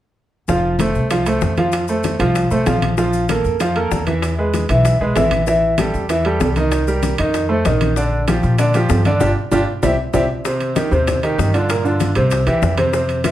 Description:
latin, salsa; 193 BPM; 4/4; straight; F major; A4 = 439 Hz
bright concert grand piano; accompaniment; 0.5-13.3 s; Bb2 to F5; -17 LUFS; right 1 dB
upright bass; bass; 0.5-13.3 s; F1 to Bb2; -20 LUFS; equal
bongos; percussion; 0.5-13.3 s; -27 LUFS; left 7 dB
congas; percussion; 0.5-13.3 s; -26 LUFS; left 3 dB
maracas; percussion; 0.5-13.3 s; -36 LUFS; left 6 dB
timbales; percussion; 0.8-13.3 s; -25 LUFS; right 2 dB
moderate large studio reverb, RT60 0.8 s; heard from further back in the room; -15 LUFS; side -13 dB against mid
0.5-10.4 A section; 10.4-13.3 B section
drum fill 9.2-10.4; band accent 9.2-10.4
0.5 F; 3.0 Bb5; 4.2 E; 5.5 Am7; 6.7 Cm7; 7.3 F7; 8.0 Bb6; 9.2 G5; 9.8 C; 10.4 Ebmaj13; 11.7 Gm7; 12.3 C
| 0.48 0.79 1.10 1.42 | 1.73 2.04 2.35 2.66 | 2.98 3.29 3.60 3.91 | 4.22 4.53 4.85 5.16 | 5.47 5.78 6.09 6.40 | 6.71 7.03 7.34 7.65 | 7.96 8.27 8.58 8.89 | 9.21 9.52 9.83 10.14 | 10.45 10.76 11.07 11.38 | 11.69 12.00 12.31 12.62 | 12.93 13.24

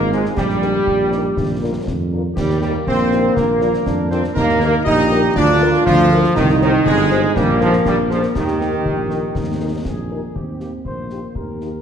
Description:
military-style march for wind band; 120 BPM; 2/4; straight; Eb major; A4 = 440 Hz
mellow trumpet section; melody; 0.0-11.8 s; Eb4 to Eb5; -27 LUFS; left 1 dB
clear euphonium; second line; 0.0-11.8 s; Bb3 to G4; -21 LUFS; right 1 dB
bright trombone section; sustained chords; 0.0-9.8 s; Eb3 to Eb4; -19 LUFS; right 1 dB
mellow tuba; bass; 0.0-11.8 s; G1 to F2; -20 LUFS; right 2 dB
dark French horn section; accompaniment; 0.1-11.7 s; Bb3 to C5; -27 LUFS; left 5 dB
concert snare drum, clash cymbals and concert bass drum; drums; 0.1-11.7 s; -25 LUFS; left 2 dB
wet scoring stage reverb, RT60 1.8 s; dark, warm production; -14 LUFS; side -8 dB against mid
0.0-10.4 A section; 10.4-11.8 A section
0.4 Eb/Bb; 1.4 Bb; 2.4 Eb; 3.4 Bb; 4.4 Eb; 5.4 Bb/D; 6.4 Cm; 7.4 Eb/Bb; 7.9 Bb7; 8.4 Eb
| 0.36 0.86 | 1.36 1.86 | 2.36 2.86 | 3.36 3.86 | 4.36 4.86 | 5.36 5.86 | 6.36 6.86 | 7.36 7.86 | 8.36 8.86 | 9.36 9.86 | 10.36 10.86 | 11.36

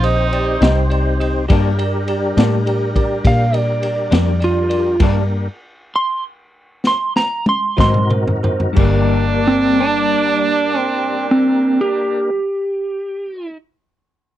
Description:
slow blues; 60-69 BPM (dotted quarters); 12/8; straight; G minor; A4 = 442 Hz
mellow harmonica; second line; 0.0-0.6, 8.8-12.3 s; D4 to Eb4; -21 LUFS; right 5 dB; overdrive
bell-like tine electric piano; accompaniment; 0.0-12.3 s; Gb4 to Eb5; -25 LUFS; right 5 dB; phaser
tonewheel organ; sustained chords; 0.0-12.3 s; G3 to C5; -24 LUFS; left 2 dB; slow rotary speaker, overdrive, chorus vibrato
vintage muted fingered electric bass; bass; 0.0-12.3 s; G1 to Bb2; -18 LUFS; left 1 dB
crunchy breakbeat drum kit; drums; 0.0-8.9 s; crash cymbal, kick drum, ride cymbal, snare drum, toms; -18 LUFS; left 1 dB
electric guitar through a small old amp; accompaniment; 0.6-12.4 s; G2 to Eb4; -23 LUFS; left 5 dB; tremolo
electric slide guitar; melody; 3.3-13.6 s; C4 to C6; -17 LUFS; right 1 dB
little or no reverb; dry, close 1970s-style studio recording; -14 LUFS; side -12 dB against mid
0.0-8.8 A section; 8.8-12.8 B section
slowing down 3.8-8.8; stop 5.0-7.8; drum fill 6.8-8.8
0.0 Cm; 1.5 Gm; 7.8 Ab7; 8.8 Gm
0.62 | 1.50 2.37 3.25 4.13 | 5.01 5.91 6.83 7.78 | 8.77 9.77 10.78 11.79

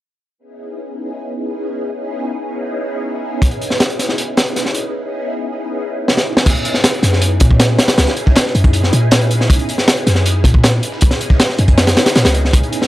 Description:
drum and bass, jungle; 158 BPM; 4/4; straight; C# dorian; A4 = 438 Hz
soft string machine; sustained chords; 0.6-12.9 s; B3 to B4; -22 LUFS; equal; phaser, ensemble chorus
crunchy breakbeat drum kit; drums; 3.4-12.9 s; crash cymbal, hi-hat, kick drum, snare drum; -13 LUFS; equal
warm 808-style bass; bass; 6.5-12.6 s; C#2 to A#2; -14 LUFS; equal; tube saturation
dusty soul sampler-style drum kit; drums; 6.5-12.8 s; hi-hat, snare drum, tambourine; -27 LUFS; left 2 dB
small room ambience; dry, gritty hardware recording; -12 LUFS; side -15 dB against mid
0.4-6.5 A section; 6.5-12.9 B section
drum fill 6.1-6.5; drop 6.5-12.9
0.4 C#m7
| 0.38 0.76 1.14 1.52 | 1.90 2.28 2.66 3.04 | 3.42 3.80 4.18 4.56 | 4.94 5.32 5.70 6.08 | 6.46 6.84 7.22 7.60 | 7.98 8.36 8.74 9.12 | 9.50 9.88 10.26 10.64 | 11.02 11.40 11.78 12.16 | 12.54

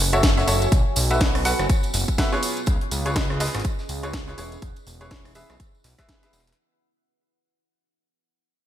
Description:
piano house; 123 BPM; 4/4; swing 59% on 16ths; A4 = 441 Hz
fat analog bass; bass; 0.0-6.5 s; E1 to C#2; -26 LUFS; equal; sidechain pumping
deep dark ambient pad; texture; 0.0-6.6 s; B3 to G#5; -32 LUFS; right 2 dB; chorus, built-in reverb, sidechain pumping
bright upright piano; riff; 0.1-6.4 s; E4 to F#5; -26 LUFS; equal; sidechain pumping, ping-pong delay
house drum kit; drums; 0.1-6.6 s; hi-hat, rim click, snare drum; -27 LUFS; equal; overdrive, gated reverb
tambourine; percussion; 0.1-6.6 s; -32 LUFS; equal
breakbeat sampler-style drum kit; drums; 0.2-6.6 s; hi-hat, snare drum; -37 LUFS; left 2 dB
electronic kick drum; drums; 0.2-6.2 s; -22 LUFS; equal; overdrive
light reverb, digital ambience; bright 1980s-style digital production; -19 LUFS; side -11 dB against mid
0.0-6.6 A section
drop 0.0-6.6; fade-out 0.0-6.6
0.0 F#m7; 0.7 B7(no3); 2.4 C#7; 4.4 E6
0.23 | 0.72 1.21 1.70 2.18 | 2.67 3.16 3.65 4.13 | 4.62 5.11 5.60 6.09

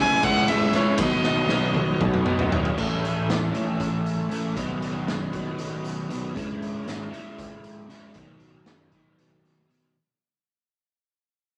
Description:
psychedelic rock; 234 BPM (eighths); 7/8; straight; A4 = 444 Hz
clear fiddle; melody; 0.0-2.0 s; C#5 to G#5; -26 LUFS; equal
overdriven combo organ; sustained chords; 0.0-6.3 s; B3 to E5; -36 LUFS; equal
overdriven semi-hollow guitar; riff; 0.0-9.9 s; A2 to E4; -28 LUFS; equal; rotary speaker
picked electric bass; bass; 0.0-9.4 s; G#1 to F#2; -34 LUFS; equal
congas; percussion; 0.1-9.9 s; -39 LUFS; equal
raw garage drum kit; drums; 0.2-9.8 s; crash cymbal, hi-hat, kick drum, ride cymbal, snare drum, toms; -32 LUFS; equal
moderate large studio reverb, RT60 1.0 s; -25 LUFS; mono
0.0-2.8 A section; 2.8-10.0 B section
drum fill 1.2-2.8, 9.3-10.0; fade-out 2.8-10.0
0.0 C#m7; 1.0 Badd9; 2.8 Amaj7; 4.6 Badd9; 6.4 C#m; 8.2 B
0.23 0.48 0.73 | 0.99 1.24 1.50 1.75 2.01 2.26 2.52 | 2.77 3.03 3.28 3.54 3.79 4.05 4.30 | 4.56 4.82 5.07 5.33 5.58 5.84 6.10 | 6.36 6.61 6.87 7.12 7.38 7.64 7.90 | 8.15 8.41 8.67 8.93 9.18 9.44 9.70

